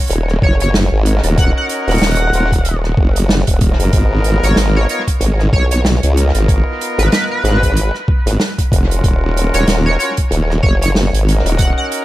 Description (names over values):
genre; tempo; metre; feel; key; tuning
glitch hop; 94 BPM; 4/4; swing 58% on 16ths; G# dorian; A4 = 440 Hz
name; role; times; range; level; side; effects
open jazz drum kit; drums; 0.0-12.0 s; hi-hat, rim click, snare drum; -20 LUFS; right 1 dB; dub echo
formant-sweep wobble bass; bass; 0.1-11.7 s; D#1 to C#2; -14 LUFS; equal; chorus
sync lead; melody; 0.4-11.9 s; B4 to F#5; -22 LUFS; equal; analog chorus, dub echo
electronic kick drum; drums; 0.4-11.7 s; none; -14 LUFS; equal; none
bright horn section; stabs; 1.1-12.0 s; B3 to A#4; -23 LUFS; equal; sidechain pumping, dub echo
room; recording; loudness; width
small room ambience; echo-heavy mix; -12 LUFS; side -16 dB against mid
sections
0.0-12.0 A section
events
none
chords
0.0 D#m7; 3.9 G#m69; 9.0 D#m7